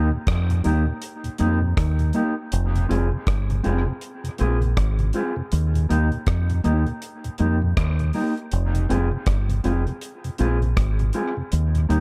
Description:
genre	dub reggae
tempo	80 BPM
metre	4/4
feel	swing 60% on 16ths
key	F minor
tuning	A4 = 440 Hz
part	mellow electric guitar	accompaniment	0.0-12.0 s	Bb3 to Ab4	-29 LUFS	equal	dub echo
part	deep dub fingered electric bass	bass	0.0-12.0 s	F1 to F2	-23 LUFS	equal	none
part	mellow tonewheel organ	accompaniment	0.1-12.0 s	Eb2 to F4	-31 LUFS	equal	slow rotary speaker
part	deep reggae drum kit	drums	0.3-12.0 s	hi-hat, kick drum, rim click	-28 LUFS	equal	none
room	small room ambience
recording	none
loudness	-22 LUFS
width	mono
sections	0.0-12.0 A section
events	none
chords	0.0 Eb; 2.5 Fm; 5.5 Eb; 8.5 Fm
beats	0.27 1.02 1.77 | 2.52 3.27 4.02 4.77 | 5.52 6.27 7.02 7.77 | 8.52 9.27 10.02 10.77 | 11.52

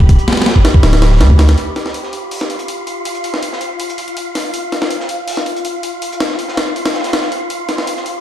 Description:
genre	drum and bass, jungle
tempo	162 BPM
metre	4/4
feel	straight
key	unclear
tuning	A4 = 438 Hz
part	saturated sub bass	bass	0.0-1.6 s	D1 to D2	-9 LUFS	equal	tube saturation
part	breakbeat sampler-style drum kit	drums	0.0-8.1 s	hi-hat, kick drum, snare drum	-15 LUFS	equal	high-pass filter on hats, high-pass filter on kick, high-pass filter on snare
part	wind-like tuned noise texture	texture	0.0-8.2 s	F4 to B5	-22 LUFS	equal	built-in reverb
part	crunchy breakbeat drum kit	drums	0.1-8.1 s	hi-hat, shaker, snare drum	-29 LUFS	left 1 dB	high-pass filter on hats, high-pass filter on snare, high-pass filter on perc, high-pass filter on room
room	light reverb, studio reverb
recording	played on a big sound system in a bare room, stone room reverb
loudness	-13 LUFS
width	side -11 dB against mid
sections	0.0-1.6 A section; 1.6-8.2 B section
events	drop 0.0-1.6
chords	none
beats	| 0.09 0.46 0.83 1.20 | 1.57 1.94 2.31 2.68 | 3.05 3.42 3.79 4.17 | 4.54 4.91 5.28 5.65 | 6.02 6.39 6.76 7.13 | 7.50 7.87

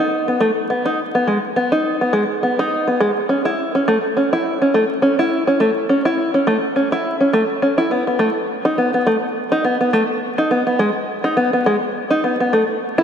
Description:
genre	folktronica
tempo	104 BPM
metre	4/4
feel	swing 56% on 16ths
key	unclear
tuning	A4 = 440 Hz
part	open-back banjo	solo	0.0-13.0 s	G#3 to E4	-15 LUFS	equal	diffuse ambient delay
room	wet lush hall reverb, RT60 2.9 s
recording	dreamy mix soaked in reverb, vinyl crackle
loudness	-15 LUFS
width	side -8 dB against mid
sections	0.0-13.0 A section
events	none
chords	none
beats	0.41 | 0.99 1.57 2.14 2.72 | 3.30 3.88 4.45 5.03 | 5.61 6.18 6.76 7.34 | 7.91 8.49 9.07 9.64 | 10.22 10.80 11.38 11.95 | 12.53

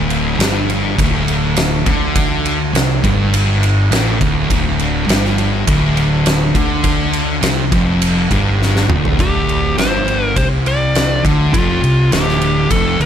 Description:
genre	stoner and doom metal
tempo	102 BPM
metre	4/4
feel	straight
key	D minor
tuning	A4 = 444 Hz
part	thick fuzz guitar	riff	0.0-13.1 s	D2 to D3	-19 LUFS	left 9 dB	distortion
part	thick fuzz guitar	riff	0.0-13.1 s	D2 to D3	-18 LUFS	right 6 dB	distortion
part	fuzz fingered electric bass	bass	0.0-13.1 s	D1 to D2	-20 LUFS	equal	overdrive
part	oversized low-tuned drum kit	drums	0.1-13.1 s	kick drum, ride cymbal, snare drum, toms	-17 LUFS	equal	none
part	fuzz lead guitar	melody	9.2-13.1 s	F4 to D5	-18 LUFS	left 1 dB	distortion
room	small room ambience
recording	none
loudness	-12 LUFS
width	side -9 dB against mid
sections	0.0-9.2 A section; 9.2-13.1 B section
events	drum fill 8.6-9.2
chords	0.0 Dm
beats	0.39 0.97 1.56 | 2.15 2.73 3.32 3.91 | 4.49 5.08 5.67 6.25 | 6.84 7.42 8.01 8.60 | 9.18 9.77 10.36 10.94 | 11.53 12.12 12.70

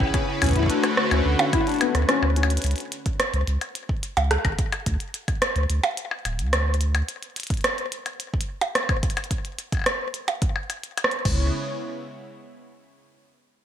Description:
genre	IDM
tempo	108 BPM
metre	4/4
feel	straight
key	C# phrygian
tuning	A4 = 440 Hz
part	warm analog pad	sustained chords	0.0-2.6, 11.3-11.5 s	C#3 to C#5	-28 LUFS	left 1 dB	chorus
part	warm sub bass	bass	0.0-7.0, 11.3-11.5 s	D1 to D2	-22 LUFS	equal	none
part	electronic kick drum	drums	0.0-11.4 s	none	-25 LUFS	equal	small room ambience
part	felt-muted upright piano	arpeggios	0.1-2.5 s	B3 to E4	-26 LUFS	left 5 dB	wide subtle chorus, ping-pong delay
part	glitchy drum kit	drums	0.1-11.4 s	crash cymbal, hi-hat, percussion blips, rim click	-25 LUFS	right 1 dB	small room ambience, gated reverb, ping-pong delay
room	light reverb, digital ambience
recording	bright 1980s-style digital production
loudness	-22 LUFS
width	side -9 dB against mid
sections	0.0-2.6 A section; 2.6-11.5 B section; 11.5-13.6 C section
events	drum fill 2.4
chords	0.4 Bm7/D; 2.6 C#5; 4.9 N.C.; 11.3 C#m7; 11.5 N.C.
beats	| 0.42 0.97 1.53 2.08 | 2.64 3.20 3.75 4.31 | 4.86 5.42 5.97 6.53 | 7.08 7.64 8.20 8.75 | 9.31 9.86 10.42 10.97

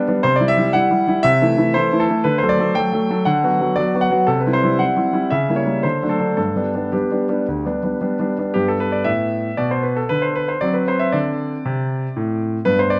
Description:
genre	classical-period piano sonatina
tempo	117 BPM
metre	4/4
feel	rubato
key	G major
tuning	A4 = 442 Hz
part	clear concert grand piano	solo	0.0-13.0 s	D2 to G5	-19 LUFS	equal	none
room	moderate recital hall reverb, RT60 1.6 s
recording	close, detailed microphones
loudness	-19 LUFS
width	mono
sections	0.0-8.6 A section; 8.6-13.0 B section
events	none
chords	0.2 C; 1.3 Am/C; 2.3 D; 3.3 Bm/D; 4.3 C; 5.3 C#dim7; 5.8 D7; 6.4 G; 10.6 D7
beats	| 0.25 0.75 1.25 1.75 | 2.26 2.76 3.27 3.78 | 4.29 4.80 5.32 5.84 | 6.38 6.93 7.47 8.01 | 8.55 9.07 9.59 10.11 | 10.62 11.14 11.65 12.16 | 12.66

